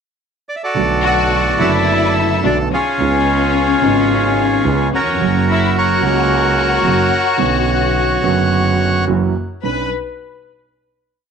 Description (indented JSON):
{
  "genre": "tango",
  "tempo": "108 BPM",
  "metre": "4/4",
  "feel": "rubato",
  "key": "B minor",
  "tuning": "A4 = 440 Hz",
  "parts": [
    { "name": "bandoneon", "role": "melody", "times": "0.5-9.9 s", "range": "E#4 to B5", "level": "-17 LUFS", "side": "right 1 dB", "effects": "none" },
    { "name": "dark concert grand piano", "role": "accompaniment", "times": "0.7-9.9 s", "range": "F#1 to B4", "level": "-18 LUFS", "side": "right 9 dB", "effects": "none" },
    { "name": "clear double bass", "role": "bass", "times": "0.8-9.9 s", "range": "F#1 to C#2", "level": "-21 LUFS", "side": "equal", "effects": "none" },
    { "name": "rich studio violin section", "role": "second line", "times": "1.0-9.9 s", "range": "C#4 to B4", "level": "-19 LUFS", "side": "left 13 dB", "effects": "none" }
  ],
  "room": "moderate spring reverb, RT60 1.5 s, studio ambience",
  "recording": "1960s-style stereo with parts hard left and right",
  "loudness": "-13 LUFS",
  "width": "side -6 dB against mid",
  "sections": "0.0-0.8 pickup bar; 0.8-9.6 A section; 9.6-11.3 final chord",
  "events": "none",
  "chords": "0.0 F#m; 0.8 Bm7; 3.0 C#7; 5.2 F#; 7.4 Bmadd9; 9.1 F#7; 9.6 Bmadd9",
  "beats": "0.20 | 0.76 1.32 1.88 2.44 | 3.00 3.55 4.10 4.65 | 5.21 5.75 6.30 6.85 | 7.41 7.96 8.51 9.07 | 9.64"
}